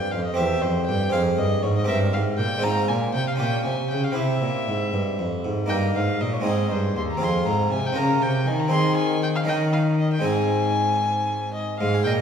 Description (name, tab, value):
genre	classical, baroque-style sonata movement with continuo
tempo	79 BPM (dotted quarters)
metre	6/8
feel	straight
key	Ab major from 5.7 s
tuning	A4 = 440 Hz
part	warm violin	melody	0.0-12.1 s	C5 to C6	-27 LUFS	left 2 dB	none
part	harpsichord	accompaniment	0.0-12.2 s	Eb2 to Eb5	-24 LUFS	equal	none
part	rich cello	bass	0.1-12.2 s	Eb2 to Eb3	-25 LUFS	right 1 dB	none
room	wet recital hall reverb, RT60 1.4 s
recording	heard from further back in the room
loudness	-20 LUFS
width	side -7 dB against mid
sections	0.0-11.8 A section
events	none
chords	0.4 C/E; 1.1 Fm; 1.9 C5/G; 2.6 Fm/Ab; 3.4 Gm7b5/Bb; 4.2 C; 5.7 Eb/G; 6.5 Ab; 7.2 Fm; 8.0 Bbm; 8.7 Ab/Eb; 9.5 Eb5; 10.3 Ab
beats	0.38 | 1.14 1.89 | 2.64 3.40 | 4.17 4.93 | 5.70 6.46 | 7.22 7.97 | 8.72 9.48 | 10.25 11.03 | 11.81